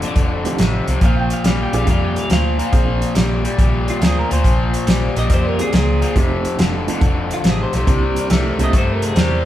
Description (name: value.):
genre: electric blues shuffle.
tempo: 140 BPM.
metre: 4/4.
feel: swing 68% on 8ths.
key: unclear.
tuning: A4 = 440 Hz.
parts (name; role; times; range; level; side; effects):
electric guitar through a small old amp; melody; 0.0-9.5 s; F4 to G5; -25 LUFS; equal; phaser.
overdriven semi-hollow guitar; riff; 0.0-9.4 s; F2 to A3; -21 LUFS; left 2 dB; none.
vintage muted fingered electric bass; bass; 0.0-9.5 s; F1 to G2; -20 LUFS; equal; none.
warm soul drum kit; drums; 0.0-9.3 s; hi-hat, kick drum, snare drum; -18 LUFS; equal; none.
barky reed electric piano; accompaniment; 0.4-3.0, 5.6-8.7 s; A3 to A4; -27 LUFS; right 5 dB; tremolo.
clear saxophone section; stabs; 8.2-9.5 s; E4 to D5-23c; -27 LUFS; right 5 dB; none.
room: wet large studio reverb, RT60 1.1 s.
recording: band playing live in one room.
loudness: -14 LUFS.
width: side -12 dB against mid.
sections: 0.0-9.5 A section.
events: none.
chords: 0.0 F7; 1.0 Bb; 4.4 Bbm7; 6.2 F9; 7.9 C9.